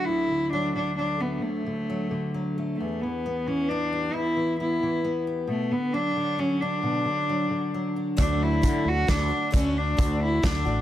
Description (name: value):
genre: indie folk with a building arrangement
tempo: 133 BPM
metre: 3/4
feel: straight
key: D major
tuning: A4 = 440 Hz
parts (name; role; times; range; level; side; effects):
- rich cello; melody; 0.0-10.8 s; A3 to F#4; -26 LUFS; equal; none
- fingerpicked steel-string acoustic guitar; accompaniment; 0.0-9.5 s; D2 to G4; -29 LUFS; left 1 dB; none
- picked twelve-string acoustic guitar; accompaniment; 8.2-10.8 s; D3 to F#4; -32 LUFS; left 4 dB; none
- fretless electric bass; bass; 8.2-10.8 s; A1 to D3; -26 LUFS; equal; wide subtle chorus
- loose indie drum kit; drums; 8.2-10.5 s; hi-hat, kick drum, snare drum; -24 LUFS; equal; none
room: light reverb, small room ambience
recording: none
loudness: -23 LUFS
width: side -12 dB against mid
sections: 0.0-8.2 A section; 8.2-10.8 B section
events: build-up 8.2-10.8; drum fill 8.2-10.8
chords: 0.0 D; 2.8 Em; 5.5 Bm; 8.2 D